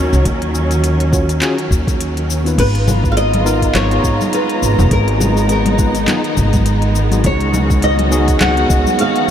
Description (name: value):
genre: sunset chillout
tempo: 103 BPM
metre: 4/4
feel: swing 57% on 16ths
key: G# dorian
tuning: A4 = 438 Hz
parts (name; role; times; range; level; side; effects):
- flamenco guitar; melody; 0.0-9.3 s; A#4 to F#5; -20 LUFS; equal; wide subtle chorus, analog delay
- bright tine electric piano; accompaniment; 0.0-9.3 s; B3 to C#5; -21 LUFS; moving between left 4 dB and right 4 dB; auto-pan, diffuse ambient delay
- dark symphonic string section; sustained chords; 0.0-9.3 s; D#3 to A#5; -20 LUFS; equal; none
- upright bass; bass; 0.0-9.3 s; E#1 to D#2; -16 LUFS; equal; tube saturation
- smooth R&B drum kit; drums; 0.1-9.3 s; cabasa, crash cymbal, handclaps, hi-hat; -24 LUFS; left 2 dB; overdrive
- electronic kick drum; drums; 0.3-8.8 s; none; -18 LUFS; equal; overdrive
- congas; percussion; 2.9-9.0 s; none; -23 LUFS; left 2 dB; none
room: moderate huge ambient reverb, RT60 8.0 s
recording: dreamy mix soaked in reverb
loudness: -12 LUFS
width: side -9 dB against mid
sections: 0.0-9.3 A section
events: none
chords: 0.0 D#m7; 2.6 G#m69; 7.2 C#9sus4